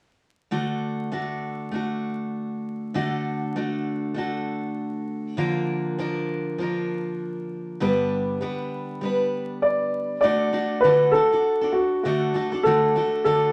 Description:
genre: pop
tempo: 99 BPM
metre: 4/4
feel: swing 55% on 16ths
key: D major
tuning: A4 = 441 Hz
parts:
  - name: picked steel-string acoustic guitar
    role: accompaniment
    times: 0.5-13.5 s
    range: G2 to B4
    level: -28 LUFS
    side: equal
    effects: none
  - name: warm upright piano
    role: melody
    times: 9.6-13.5 s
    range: F#4 to D5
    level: -22 LUFS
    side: equal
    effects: none
room: wet studio reverb, RT60 0.7 s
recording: vinyl crackle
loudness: -25 LUFS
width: mono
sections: 0.5-10.2 A section; 10.2-13.5 B section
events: none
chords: 0.5 D; 5.4 Bb/D; 7.8 G; 10.2 D

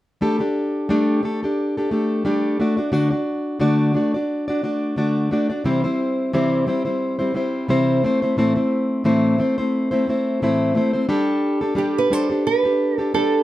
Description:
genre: pop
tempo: 88 BPM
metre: 4/4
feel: swing 55% on 16ths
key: unclear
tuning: A4 = 442 Hz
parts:
  - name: fingerpicked plugged-in steel-string acoustic guitar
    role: accompaniment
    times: 0.2-13.4 s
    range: A2 to D5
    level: -18 LUFS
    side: left 1 dB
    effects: none
  - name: nylon-string guitar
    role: melody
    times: 11.8-13.4 s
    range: G4 to C5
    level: -20 LUFS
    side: right 5 dB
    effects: none
room: wet studio reverb, RT60 0.6 s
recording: dark, warm production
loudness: -18 LUFS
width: side -15 dB against mid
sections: 0.2-11.1 A section; 11.1-13.4 B section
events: none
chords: 0.2 Gsus2; 2.6 D; 5.7 C; 8.0 Am; 11.1 Gsus2

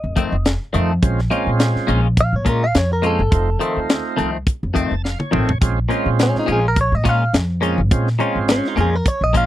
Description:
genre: straight-eighth soul blues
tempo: 105 BPM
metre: 4/4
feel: swing 54% on 16ths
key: Bb minor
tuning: A4 = 440 Hz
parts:
  - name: direct-recorded clean electric guitar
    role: melody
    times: 0.0-9.5 s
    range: Db4 to F5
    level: -21 LUFS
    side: equal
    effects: none
  - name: upright bass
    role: bass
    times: 0.0-9.4 s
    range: F1 to Bb2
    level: -19 LUFS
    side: equal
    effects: none
  - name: clean electric guitar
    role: stabs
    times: 0.2-9.5 s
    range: F2 to F4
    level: -21 LUFS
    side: left 4 dB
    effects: phaser
  - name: tight funk drum kit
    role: drums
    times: 0.2-9.5 s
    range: hi-hat, kick drum, snare drum, toms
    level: -18 LUFS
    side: equal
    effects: none
  - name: overdriven tonewheel organ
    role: accompaniment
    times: 0.7-8.9 s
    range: Ab3 to A5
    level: -23 LUFS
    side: right 5 dB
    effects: slow rotary speaker
room: little or no reverb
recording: dry, close 1970s-style studio recording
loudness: -16 LUFS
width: side -13 dB against mid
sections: 0.0-5.6 A section; 5.6-9.5 B section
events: tonewheel organ fill 4.5-5.6; drum fill 5.0-5.6; clean electric guitar solo 5.6-9.5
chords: 0.0 F7; 1.0 Bbm7; 3.3 F7; 5.6 Bbm7

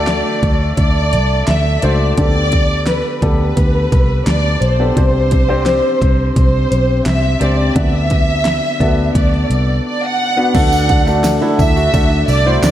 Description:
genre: piano-driven pop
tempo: 86 BPM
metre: 4/4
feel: straight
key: unclear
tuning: A4 = 441 Hz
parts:
  - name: warm studio violin section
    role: melody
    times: 0.0-12.7 s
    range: B4 to F#5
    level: -18 LUFS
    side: equal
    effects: tape echo
  - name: warm grand piano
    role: accompaniment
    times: 0.0-12.7 s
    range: C3 to C5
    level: -19 LUFS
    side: left 1 dB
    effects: none
  - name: vintage muted picked electric bass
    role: bass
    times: 0.0-12.7 s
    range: B1 to D2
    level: -16 LUFS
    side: equal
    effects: none
  - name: pop drum kit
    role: drums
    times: 0.1-12.7 s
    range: crash cymbal, handclaps, hi-hat, kick drum, ride cymbal, snare drum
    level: -17 LUFS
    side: equal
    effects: none
  - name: fingerpicked plugged-in steel-string acoustic guitar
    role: riff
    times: 10.5-12.7 s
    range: D4 to F#4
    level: -23 LUFS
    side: right 7 dB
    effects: none
  - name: mellow French horn section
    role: second line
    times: 10.6-12.7 s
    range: D3 to D4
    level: -22 LUFS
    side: left 1 dB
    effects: tape echo
  - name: tambourine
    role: percussion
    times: 10.7-12.7 s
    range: none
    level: -32 LUFS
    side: right 6 dB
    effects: none
room: moderate lush hall reverb, RT60 2.0 s, small room ambience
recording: dreamy mix soaked in reverb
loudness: -12 LUFS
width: side -12 dB against mid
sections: 0.0-10.5 A section; 10.5-12.7 B section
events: none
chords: 0.0 D; 2.2 Gadd9/D; 5.0 Csus2; 7.8 Bm/D; 10.5 D

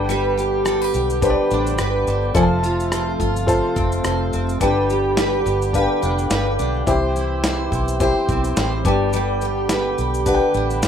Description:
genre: acoustic pop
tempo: 106 BPM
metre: 4/4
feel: swing 55% on 16ths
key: unclear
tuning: A4 = 440 Hz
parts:
  - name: felt-muted upright piano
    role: accompaniment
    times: 0.0-10.9 s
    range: D4 to A5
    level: -23 LUFS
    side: left 4 dB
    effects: none
  - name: picked steel-string acoustic guitar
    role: accompaniment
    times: 0.0-10.9 s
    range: F3 to C5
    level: -22 LUFS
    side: right 1 dB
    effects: double-tracked left and right
  - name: tonewheel organ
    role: sustained chords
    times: 0.0-10.9 s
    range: C3 to G4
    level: -27 LUFS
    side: right 2 dB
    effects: overdrive, lush chorus
  - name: vintage muted fingered electric bass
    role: bass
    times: 0.0-10.9 s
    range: F1 to C2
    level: -24 LUFS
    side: equal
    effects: none
  - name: dusty soul sampler-style drum kit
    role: drums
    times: 0.1-10.9 s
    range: kick drum, rim click, shaker, snare drum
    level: -24 LUFS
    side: equal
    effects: none
room: little or no reverb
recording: rough home demo mix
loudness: -17 LUFS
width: side -8 dB against mid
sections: 0.0-10.9 A section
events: none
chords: 0.0 G; 2.4 F; 4.6 G; 6.9 C; 8.8 G

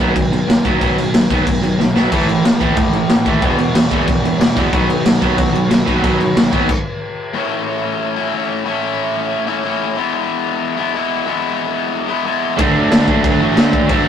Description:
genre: punk rock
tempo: 184 BPM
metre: 4/4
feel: straight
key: unclear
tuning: A4 = 440 Hz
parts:
  - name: cranked stack guitar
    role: riff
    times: 0.0-14.1 s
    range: A2 to E4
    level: -19 LUFS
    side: left 4 dB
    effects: overdrive
  - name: distorted electric guitar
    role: riff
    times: 0.0-6.7, 12.6-14.1 s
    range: E2 to D4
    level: -18 LUFS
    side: right 4 dB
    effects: distortion
  - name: fuzz picked electric bass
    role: bass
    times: 0.0-6.6, 12.6-14.1 s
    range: E1 to D3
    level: -22 LUFS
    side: equal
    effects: overdrive
  - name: raw garage drum kit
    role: drums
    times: 0.0-6.8, 12.6-14.0 s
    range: crash cymbal, kick drum, snare drum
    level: -16 LUFS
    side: equal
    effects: none
  - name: fuzz guitar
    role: riff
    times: 2.1-6.7, 12.6-14.1 s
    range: E2 to D4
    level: -20 LUFS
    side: equal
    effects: distortion
room: light reverb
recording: rough rehearsal-room recording, tube saturation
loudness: -13 LUFS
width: side -8 dB against mid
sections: 0.0-7.3 A section; 7.3-14.1 B section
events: drum fill 1.8-2.1; stop 6.7-7.3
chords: 0.0 B; 2.1 A5; 3.4 E; 4.7 B; 7.3 A; 10.0 E; 12.6 D

